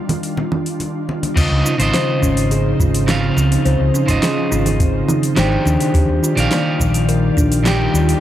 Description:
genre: sunset chillout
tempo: 105 BPM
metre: 4/4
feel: straight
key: Db major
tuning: A4 = 441 Hz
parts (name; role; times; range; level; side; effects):
- electric guitar at the edge of break-up; accompaniment; 0.0-8.2 s; Db3 to G5; -19 LUFS; equal; auto-pan, tape echo
- ethereal airy pad; sustained chords; 0.0-8.2 s; Db3 to D5; -23 LUFS; right 1 dB; ensemble chorus, built-in reverb
- deep house drum kit; drums; 0.1-8.2 s; cabasa, congas, crash cymbal, hi-hat, snare drum; -22 LUFS; right 1 dB; overdrive
- congas; percussion; 0.1-1.3 s; none; -25 LUFS; left 2 dB; none
- kalimba; arpeggios; 1.4-8.1 s; Bb3 to C5; -22 LUFS; left 1 dB; tape echo
- hollow-body short-scale fingered electric bass; bass; 1.4-8.1 s; Ab1 to Eb2; -18 LUFS; equal; none
- electronic kick drum; drums; 1.4-7.5 s; none; -18 LUFS; equal; none
room: digital ambience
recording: dry, gritty hardware recording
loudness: -14 LUFS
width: side -12 dB against mid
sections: 0.0-1.4 A section; 1.4-8.2 B section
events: none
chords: 0.0 Ebmaj9; 1.4 Dbmaj9; 5.7 Ebmaj9

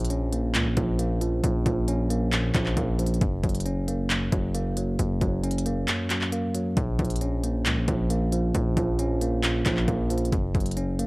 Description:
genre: hip hop, trap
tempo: 135 BPM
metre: 4/4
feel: half-time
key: Bb minor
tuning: A4 = 439 Hz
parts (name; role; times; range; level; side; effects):
- tine electric piano; accompaniment; 0.0-11.1 s; Gb2 to Db4; -26 LUFS; right 1 dB; low-pass filter
- distorted 808-style bass; bass; 0.0-11.1 s; Gb1 to Db2; -27 LUFS; equal; distortion
- trap drum kit; drums; 0.0-11.1 s; handclaps, hi-hat, kick drum; -28 LUFS; equal; overdrive
room: light reverb, digital ambience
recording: home recording on cassette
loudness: -23 LUFS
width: side -23 dB against mid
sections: 0.0-11.1 A section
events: kick muted 5.9-6.8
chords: 0.0 Bbm; 3.2 Gb; 6.8 Bbm; 10.3 Gb5

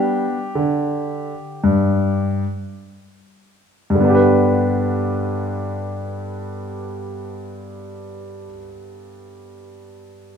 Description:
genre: classical, baroque-style suite movement for grand piano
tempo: 54 BPM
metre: 4/4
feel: rubato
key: G major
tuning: A4 = 440 Hz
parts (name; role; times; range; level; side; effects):
- clear grand piano; solo; 0.0-10.4 s; G2 to B4; -18 LUFS; equal; none
room: wet recital hall reverb, RT60 1.7 s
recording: minimal, uncompressed stereo recording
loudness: -17 LUFS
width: side -7 dB against mid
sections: 0.0-3.9 A section; 3.9-8.3 B section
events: slowing down 0.0-3.9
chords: 0.0 G5; 3.9 G

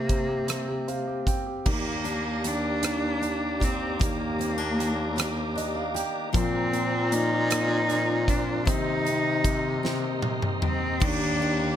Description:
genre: six-eight pop ballad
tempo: 51 BPM (dotted quarters)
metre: 6/8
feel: straight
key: Eb major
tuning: A4 = 440 Hz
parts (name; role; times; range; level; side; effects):
- clear cello; melody; 0.0-11.8 s; Bb3 to Eb4; -29 LUFS; equal; none
- warm concert grand piano; accompaniment; 0.0-11.8 s; Eb3 to G5; -34 LUFS; right 1 dB; none
- warm bass clarinet; bass; 0.0-11.8 s; Eb2 to C3; -30 LUFS; equal; none
- huge arena drum kit; drums; 0.1-11.6 s; crash cymbal, hi-hat, kick drum, ride cymbal, rim click, snare drum, toms; -29 LUFS; equal; none
- tonewheel organ; sustained chords; 1.7-11.8 s; F4 to D6; -34 LUFS; equal; chorus vibrato, stopped rotary speaker
- picked steel-string acoustic guitar; arpeggios; 1.7-11.8 s; Eb3 to G4; -34 LUFS; left 9 dB; digital delay
room: small room reverb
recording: none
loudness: -24 LUFS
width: side -10 dB against mid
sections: 0.0-1.7 A section; 1.7-11.0 B section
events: grand piano fill 0.5-1.7, 5.2-6.3; drum fill 9.8-11.0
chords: 0.0 C5; 1.7 Ebmaj7; 6.3 Bbsus2; 8.7 Cm7; 11.0 Ebmaj7

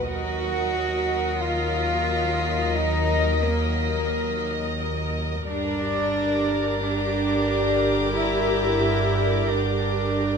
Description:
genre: cinematic, suspense film score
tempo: free time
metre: none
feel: none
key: unclear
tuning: A4 = 441 Hz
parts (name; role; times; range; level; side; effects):
- warm studio violin section; melody; 0.0-10.4 s; D5 to D#5; -33 LUFS; left 4 dB; none
- rich studio violin section; second line; 0.0-10.4 s; A#4; -32 LUFS; right 1 dB; none
- dark symphonic viola section; accompaniment; 0.0-10.4 s; F#3 to G4; -31 LUFS; equal; none
- mellow French horn section; sustained chords; 0.0-10.4 s; D3 to A#4; -31 LUFS; left 3 dB; none
- warm studio double bass section; bass; 0.0-10.4 s; D#2 to G2; -30 LUFS; right 4 dB; none
- deep rumbling drone; drone; 0.0-10.4 s; G1 to D#2; -32 LUFS; left 2 dB; built-in reverb
- dark clarinet; second line; 0.1-10.4 s; A#4 to F#5; -30 LUFS; left 2 dB; none
- warm studio cello section; bass; 0.1-10.4 s; A#3 to F#4; -27 LUFS; right 2 dB; none
- warm chamber violin section; texture; 0.1-10.4 s; Bb5 to B6; -36 LUFS; left 2 dB; none
room: light reverb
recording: close, detailed microphones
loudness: -21 LUFS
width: side -6 dB against mid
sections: 0.0-10.4 A section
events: none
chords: 0.1 D#m; 5.5 Gm

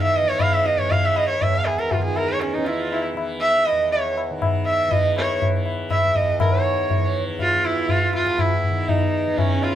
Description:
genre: indian classical, Hindustani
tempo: 120 BPM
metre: 4/4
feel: straight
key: E raga marwa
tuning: A4 = 440 Hz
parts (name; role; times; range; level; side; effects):
- rich sarangi; melody; 0.0-9.8 s; C#4 to F5; -21 LUFS; right 1 dB; none
- pedal harmonium; second line; 0.0-9.8 s; C#4 to F5; -30 LUFS; right 4 dB; none
- tanpura; drone; 0.0-9.8 s; E2 to E3; -28 LUFS; left 1 dB; none
- tabla; percussion; 0.4-9.8 s; none; -23 LUFS; left 2 dB; none
room: moderate studio ambience, RT60 0.5 s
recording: band playing live in one room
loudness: -18 LUFS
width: side -11 dB against mid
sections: 0.0-6.4 A section; 6.4-9.8 B section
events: none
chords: none

